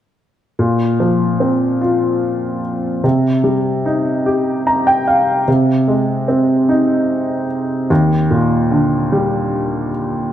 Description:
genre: pop.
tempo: 49 BPM (dotted quarters).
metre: 6/8.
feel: straight.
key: unclear.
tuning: A4 = 440 Hz.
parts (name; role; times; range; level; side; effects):
clear upright piano; accompaniment; 0.6-10.3 s; Eb2 to Bb5; -14 LUFS; equal; none.
room: moderate scoring stage reverb, RT60 1.5 s.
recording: none.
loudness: -14 LUFS.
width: side -11 dB against mid.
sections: 0.6-10.3 A section.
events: upright piano fill 4.3-5.5.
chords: 0.6 Bbsus2; 3.0 Cm; 5.5 Ab/C; 7.9 Ebmaj7.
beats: | 0.59 1.81 | 3.04 4.26 | 5.47 6.69 | 7.90 9.12.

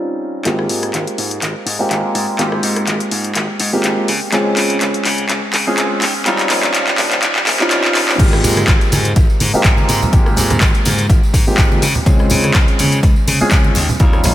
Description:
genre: filtered disco house.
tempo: 124 BPM.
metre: 4/4.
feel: swing 55% on 16ths.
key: Ab major.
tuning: A4 = 439 Hz.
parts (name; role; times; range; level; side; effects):
warm grand piano; accompaniment; 0.0-14.3 s; G3 to Ab4; -18 LUFS; equal; phaser, sidechain pumping, low-pass filter.
glassy slap bass; bass; 0.5-14.3 s; Ab1 to Db3; -20 LUFS; equal; sidechain pumping, high-pass filter, low-pass filter.
punchy analog drum machine; drums; 0.5-14.3 s; crash cymbal, handclaps, hi-hat, rim click; -18 LUFS; left 1 dB; overdrive, sidechain pumping on hats, sidechain pumping on cymbals.
electronic kick drum; drums; 8.2-14.1 s; none; -13 LUFS; equal; overdrive.
tambourine and congas; percussion; 8.2-14.3 s; none; -20 LUFS; right 1 dB; sidechain pumping on perc, low-pass filter on perc.
room: moderate church reverb, RT60 3.4 s.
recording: dreamy mix soaked in reverb, high-pass filter.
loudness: -12 LUFS.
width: side -13 dB against mid.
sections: 0.5-8.2 A section; 8.2-14.3 B section.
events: build-up 0.5-8.2; drum fill 0.5-8.2; filter sweep 0.5-8.2; drop 8.2-14.3.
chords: 0.5 Abmaj13; 4.1 Dbmaj7; 6.0 Eb13; 8.2 Abmaj13; 11.8 Dbmaj7; 13.8 Eb13.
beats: | 0.45 0.94 1.42 1.91 | 2.39 2.87 3.36 3.84 | 4.33 4.81 5.29 5.78 | 6.26 6.74 7.23 7.71 | 8.20 8.68 9.16 9.65 | 10.13 10.62 11.10 11.58 | 12.07 12.55 13.04 13.52 | 14.00.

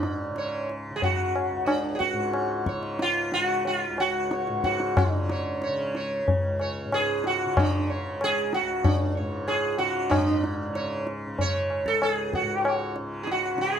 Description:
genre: indian classical, Hindustani.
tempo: 93 BPM.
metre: 4/4.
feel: straight.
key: unclear.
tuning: A4 = 440 Hz.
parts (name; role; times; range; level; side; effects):
sitar; melody; 0.0-13.8 s; D4 to C#5; -26 LUFS; right 1 dB; none.
tanpura; drone; 0.0-13.8 s; C#2 to C#3; -33 LUFS; equal; none.
tabla; percussion; 0.0-13.8 s; none; -27 LUFS; left 2 dB; none.
room: light reverb.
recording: none.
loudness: -24 LUFS.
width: side -8 dB against mid.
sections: 0.0-10.1 A section; 10.1-13.8 B section.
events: speeding up 0.0-13.8.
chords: none.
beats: 0.36 1.03 1.69 | 2.35 3.00 3.66 4.32 | 4.97 5.62 6.27 6.92 | 7.56 8.20 8.85 9.48 | 10.12 10.76 11.39 12.02 | 12.65 13.28.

